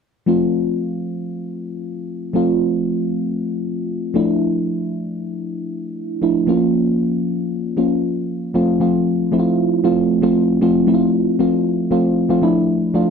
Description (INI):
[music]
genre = pop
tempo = 116 BPM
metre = 4/4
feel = straight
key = F major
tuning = A4 = 441 Hz
[part]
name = mellow FM electric piano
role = solo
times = 0.3-13.1 s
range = F3 to F4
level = -16 LUFS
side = equal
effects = chorus, phaser
[sound]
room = light reverb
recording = dry, close 1970s-style studio recording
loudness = -16 LUFS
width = side -6 dB against mid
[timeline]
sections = 0.3-8.6 A section; 8.6-13.1 B section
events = none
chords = 0.3 F; 4.2 Dmadd9; 6.5 Bbm; 8.6 F; 12.4 Dmadd9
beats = | 0.28 0.80 1.31 1.83 | 2.35 2.86 3.38 3.90 | 4.42 4.93 5.45 5.97 | 6.48 7.00 7.52 8.04 | 8.55 9.07 9.59 10.11 | 10.62 11.14 11.66 12.17 | 12.69